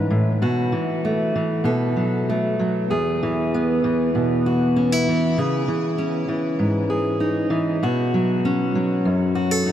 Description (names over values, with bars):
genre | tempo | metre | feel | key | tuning
folk, solo fingerstyle acoustic guitar | 98 BPM | 4/4 | rubato | unclear | A4 = 436 Hz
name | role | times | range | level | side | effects
fingerpicked steel-string acoustic guitar | solo | 0.0-9.7 s | E2 to B4 | -19 LUFS | equal | none
room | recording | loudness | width
wet huge ambient reverb, RT60 6.9 s | in a vast, echoing space | -19 LUFS | side -10 dB against mid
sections
0.0-9.7 A section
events
none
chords
0.4 B7sus4; 1.6 B5; 2.9 E; 5.4 C#madd9; 7.8 Bsus2